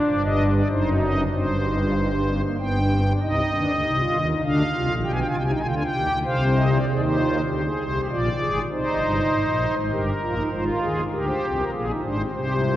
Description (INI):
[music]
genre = classical, baroque-style 3-part fugue for pipe organ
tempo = 98 BPM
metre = 3/4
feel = straight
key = C minor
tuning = A4 = 440 Hz
[part]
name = pipe organ, strings celeste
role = solo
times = 0.0-12.8 s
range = Gb1 to Ab5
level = -20 LUFS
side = equal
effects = none
[sound]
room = wet cathedral reverb, RT60 4.6 s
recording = worn, warbling old tape, cassette tape, warbly pitch drift, nothing above 10.5 kHz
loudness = -20 LUFS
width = side -13 dB against mid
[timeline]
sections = 0.0-3.2 A section; 3.2-6.9 B section; 6.9-12.8 A section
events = none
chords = 0.0 N.C.; 0.7 Cdim/Gb; 1.3 Cm/G; 2.6 G; 3.2 Cm; 4.4 Bbadd9; 5.0 G7/B; 6.2 Cm; 6.9 Cm/Eb; 8.1 Bb; 8.7 Ab; 9.9 Gm; 10.5 Fm/Ab